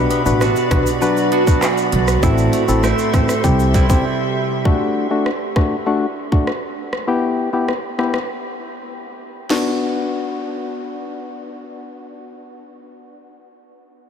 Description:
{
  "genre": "dancehall",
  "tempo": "99 BPM",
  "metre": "4/4",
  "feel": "straight",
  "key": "B phrygian",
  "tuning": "A4 = 439 Hz",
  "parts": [
    { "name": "percussive organ stab", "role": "accompaniment", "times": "0.0-13.4 s", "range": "A3 to B4", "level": "-21 LUFS", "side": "left 4 dB", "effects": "chorus" },
    { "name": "glassy FM pad", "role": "sustained chords", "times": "0.0-4.6 s", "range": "F#4 to C6", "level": "-22 LUFS", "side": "right 1 dB", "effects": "ensemble chorus, built-in reverb, sidechain pumping" },
    { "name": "clean electric guitar", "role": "arpeggios", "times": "0.0-4.7 s", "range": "A2 to F#4", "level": "-23 LUFS", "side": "right 8 dB", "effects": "diffuse ambient delay" },
    { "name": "upright bass", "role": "bass", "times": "0.0-3.9 s", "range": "A1 to C2", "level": "-19 LUFS", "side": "equal", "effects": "none" },
    { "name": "island pop drum kit", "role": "drums", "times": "0.1-9.6 s", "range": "crash cymbal, handclaps, hi-hat, kick drum, rim click, shaker, snare drum", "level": "-22 LUFS", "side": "equal", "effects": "none" },
    { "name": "tube shaker", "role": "percussion", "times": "0.1-4.0 s", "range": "none", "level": "-34 LUFS", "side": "right 8 dB", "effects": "none" }
  ],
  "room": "moderate huge ambient reverb, RT60 8.9 s",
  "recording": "dreamy mix soaked in reverb",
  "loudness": "-15 LUFS",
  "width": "side -7 dB against mid",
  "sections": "0.0-4.7 A section; 4.7-9.5 B section; 9.5-11.9 C section",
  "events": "break 4.0-4.7, 8.3-9.5",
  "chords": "0.0 Bm; 2.2 Am; 3.4 C; 4.7 D; 7.1 Em; 9.5 Bm",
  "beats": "0.41 1.02 1.62 | 2.23 2.84 3.44 4.05 | 4.65 5.26 5.87 6.47 | 7.08 7.68 8.29 8.90 | 9.50 10.11 10.71 11.32"
}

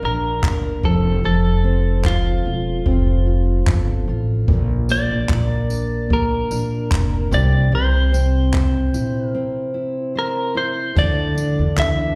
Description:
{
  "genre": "acoustic pop",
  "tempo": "74 BPM",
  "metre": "4/4",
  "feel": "swing 55% on 16ths",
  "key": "unclear",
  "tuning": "A4 = 440 Hz",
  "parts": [
    { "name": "clean electric guitar", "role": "melody", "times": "0.0-12.2 s", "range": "F4 to E5", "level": "-26 LUFS", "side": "equal", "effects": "slapback echo" },
    { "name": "fingerpicked steel-string acoustic guitar", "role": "accompaniment", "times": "0.0-12.2 s", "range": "Bb2 to C5", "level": "-25 LUFS", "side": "equal", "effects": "none" },
    { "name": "upright bass", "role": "bass", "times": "0.0-12.1 s", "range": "E1 to E2", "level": "-22 LUFS", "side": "equal", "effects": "none" },
    { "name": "jazz brush drum kit", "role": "drums", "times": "0.4-12.0 s", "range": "crash cymbal, handclaps, kick drum, tambourine", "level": "-23 LUFS", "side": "equal", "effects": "none" },
    { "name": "granular cloud pad", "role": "sustained chords", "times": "11.6-12.2 s", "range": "D3 to D4", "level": "-29 LUFS", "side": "equal", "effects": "built-in reverb" }
  ],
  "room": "light reverb",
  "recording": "live gig heard through the venue's PA, recital hall reverb",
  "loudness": "-19 LUFS",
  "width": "mono",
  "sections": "0.0-11.0 A section; 11.0-12.2 B section",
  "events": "break 9.3-11.0",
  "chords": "0.0 Bb; 0.8 F; 4.5 Bb; 7.3 C; 11.0 Dsus2",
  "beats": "0.43 | 1.24 2.05 2.86 3.67 | 4.48 5.29 6.10 6.91 | 7.72 8.53 9.34 10.15 | 10.97 11.78"
}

